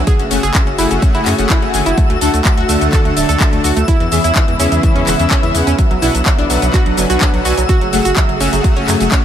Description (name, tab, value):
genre	progressive house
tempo	126 BPM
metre	4/4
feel	straight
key	F# minor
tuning	A4 = 440 Hz
part	warm studio string section	sustained chords	0.0-9.2 s	C#3 to G#4	-21 LUFS	left 1 dB	sidechain pumping
part	saturated sub bass	bass	0.0-9.1 s	D1 to F#2	-18 LUFS	equal	sidechain pumping
part	twinkling granular texture	texture	0.0-9.2 s	E5 to E6	-23 LUFS	right 2 dB	built-in reverb, sidechain pumping
part	analog pluck	arpeggios	0.1-9.2 s	E3 to A4	-19 LUFS	right 3 dB	chorus, sidechain pumping, ping-pong delay
part	electronic kick drum	drums	0.1-9.2 s	none	-13 LUFS	equal	overdrive, small room ambience
part	house drum kit	drums	0.1-9.2 s	handclaps, hi-hat, shaker	-20 LUFS	left 1 dB	overdrive, sidechain pumping on hats, small room ambience, sidechain pumping on cymbals, sidechain pumping on perc
part	soft supersaw	stabs	0.3-9.2 s	B2 to A5	-19 LUFS	left 2 dB	sidechain pumping, ping-pong delay
room	little or no reverb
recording	none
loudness	-11 LUFS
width	side -10 dB against mid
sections	0.0-9.2 A section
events	none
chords	0.1 F#madd9; 2.0 D; 3.9 E6; 5.8 Bm; 7.7 F#madd9